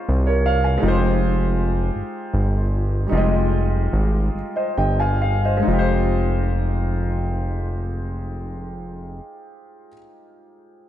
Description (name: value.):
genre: slow six-eight R&B.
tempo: 43-54 BPM (dotted quarters).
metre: 6/8.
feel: straight.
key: F minor.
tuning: A4 = 443 Hz.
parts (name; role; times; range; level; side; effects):
warm concert grand piano; accompaniment; 0.0-10.9 s; G3 to Ab5; -24 LUFS; left 1 dB; lush chorus.
fat analog bass; bass; 0.1-9.2 s; F1 to C2; -20 LUFS; equal; none.
room: light reverb, studio reverb.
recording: none.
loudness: -18 LUFS.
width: side -12 dB against mid.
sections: 0.0-5.7 A section; 5.7-8.4 B section.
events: slowing down 0.8-5.7.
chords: 0.0 Bbm11; 0.8 Fm9.